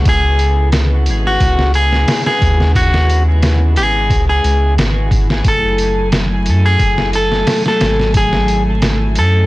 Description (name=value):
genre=trip hop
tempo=89 BPM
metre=4/4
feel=swing 53% on 16ths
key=F# dorian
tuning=A4 = 440 Hz
part: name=warm studio string section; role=sustained chords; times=0.0-9.5 s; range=C#3 to G#5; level=-22 LUFS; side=equal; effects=none
part: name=round analog bass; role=bass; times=0.0-9.5 s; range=F#1 to F#2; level=-14 LUFS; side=equal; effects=tube saturation
part: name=electric guitar at the edge of break-up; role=melody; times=0.1-9.5 s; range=F#4 to A4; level=-16 LUFS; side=left 1 dB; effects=dub echo
part: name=trip hop sampler-style drum kit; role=drums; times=0.1-9.3 s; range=hi-hat, kick drum, snare drum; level=-16 LUFS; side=equal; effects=none
room=digital ambience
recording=blown-out, overdriven recording, vinyl crackle, overdrive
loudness=-11 LUFS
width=side -18 dB against mid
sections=0.0-9.5 A section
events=none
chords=0.1 C#m7; 5.5 F#m9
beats=| 0.06 0.73 1.41 2.08 | 2.76 3.43 4.11 4.78 | 5.45 6.13 6.80 7.48 | 8.15 8.82